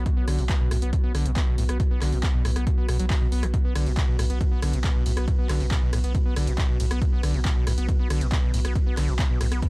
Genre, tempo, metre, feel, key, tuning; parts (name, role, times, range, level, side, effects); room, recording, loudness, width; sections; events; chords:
driving peak-time techno; 138 BPM; 4/4; straight; B minor; A4 = 440 Hz
overdriven acid bass; riff; 0.0-9.7 s; A2 to B3; -30 LUFS; equal; distortion, wide subtle chorus, sidechain pumping, analog delay
saturated sub bass; bass; 0.0-9.6 s; B1; -25 LUFS; equal; overdrive, sidechain pumping, low-pass filter
airy breathy pad; texture; 0.0-9.7 s; B3 to C#5; -35 LUFS; equal; chorus, sidechain pumping
electronic kick drum; drums; 0.1-9.7 s; -23 LUFS; equal
punchy analog drum machine; drums; 0.1-9.7 s; handclaps, hi-hat, ride cymbal, rim click; -33 LUFS; equal; sidechain pumping on hats, sidechain pumping on cymbals
little or no reverb; dry, gritty hardware recording; -21 LUFS; side -24 dB against mid
0.0-9.7 A section
0.0 B5